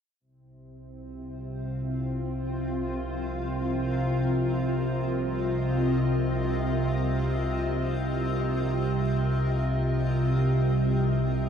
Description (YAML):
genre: dark ambient drone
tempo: free time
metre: none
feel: none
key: C minor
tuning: A4 = 440 Hz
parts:
  - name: granular cloud pad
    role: sustained chords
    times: 1.7-11.5 s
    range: C4 to Eb5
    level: -31 LUFS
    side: left 1 dB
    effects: built-in reverb
  - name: organ-like drone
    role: drone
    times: 0.9-11.5 s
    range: C2 to C3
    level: -26 LUFS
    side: equal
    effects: ensemble chorus, built-in reverb
room: wet spring reverb, RT60 2.9 s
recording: none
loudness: -25 LUFS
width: side -8 dB against mid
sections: 0.2-11.5 A section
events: fade-out on ambient pad 0.2-11.5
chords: 0.2 Cm